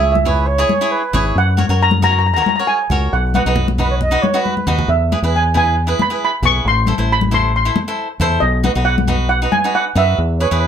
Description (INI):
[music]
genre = calypso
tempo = 136 BPM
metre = 4/4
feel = straight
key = unclear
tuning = A4 = 440 Hz
[part]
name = steel pan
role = melody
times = 0.0-10.7 s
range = D#5 to C#6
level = -17 LUFS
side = right 1 dB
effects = none
[part]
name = cavaquinho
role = accompaniment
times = 0.0-10.7 s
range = D#4 to C#5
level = -20 LUFS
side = equal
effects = none
[part]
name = fingered electric bass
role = bass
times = 0.0-10.7 s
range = G#1 to F#2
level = -17 LUFS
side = equal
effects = none
[part]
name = congas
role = percussion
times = 0.2-9.6 s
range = none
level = -22 LUFS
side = left 3 dB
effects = none
[part]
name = bright reedy baroque flute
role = second line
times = 0.3-4.7, 10.4-10.7 s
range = B4 to D#5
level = -19 LUFS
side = right 4 dB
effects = none
[sound]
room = moderate small room reverb, RT60 0.5 s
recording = none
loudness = -13 LUFS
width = side -8 dB against mid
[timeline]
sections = 0.0-10.7 A section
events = drum fill 4.4-4.9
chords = 0.0 C#m; 1.4 F#; 3.1 B; 4.9 E; 6.6 Am; 8.4 B